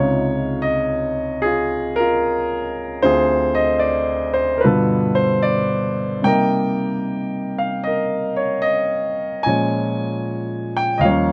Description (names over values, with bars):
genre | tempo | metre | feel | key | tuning
jazz ballad | 75 BPM | 4/4 | swing 67% on 8ths | unclear | A4 = 441 Hz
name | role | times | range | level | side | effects
warm baby grand piano | solo | 0.0-11.3 s | Db2 to Ab5 | -20 LUFS | equal | none
room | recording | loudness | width
light reverb | close, detailed microphones | -20 LUFS | mono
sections
0.0-11.3 A section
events
none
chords
0.0 Dbmaj9; 3.0 Dm7b5; 4.6 G7; 6.2 Cm7; 9.4 Bbm7